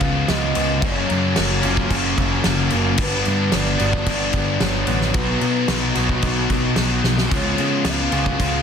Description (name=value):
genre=rock, shoegaze and dream pop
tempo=111 BPM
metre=4/4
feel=straight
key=unclear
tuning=A4 = 440 Hz
part: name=pure breathy sine lead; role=melody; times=0.0-8.6 s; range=B4 to E#5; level=-28 LUFS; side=right 3 dB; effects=chorus, slapback echo
part: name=direct-recorded clean electric guitar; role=arpeggios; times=0.0-8.6 s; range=E#3 to G#4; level=-31 LUFS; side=right 9 dB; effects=wide subtle chorus, slapback echo
part: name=cranked stack guitar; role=riff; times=0.0-8.6 s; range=F#2 to E#4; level=-24 LUFS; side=right 1 dB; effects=overdrive
part: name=thick fuzz guitar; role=riff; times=0.0-8.6 s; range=F#2 to C#4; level=-25 LUFS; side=left 11 dB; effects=distortion, wide subtle chorus
part: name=growling picked electric bass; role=bass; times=0.0-8.6 s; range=F#1 to C#3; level=-23 LUFS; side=equal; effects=overdrive
part: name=loose indie drum kit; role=drums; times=0.0-8.5 s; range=crash cymbal, kick drum, snare drum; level=-22 LUFS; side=equal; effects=none
room=small room ambience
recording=dense, heavily limited modern master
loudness=-17 LUFS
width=side -7 dB against mid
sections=0.0-8.6 A section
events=drum fill 7.0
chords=0.0 C#7; 0.8 F#maj7; 3.0 Gmaj7; 5.2 Bmaj7; 7.3 C#7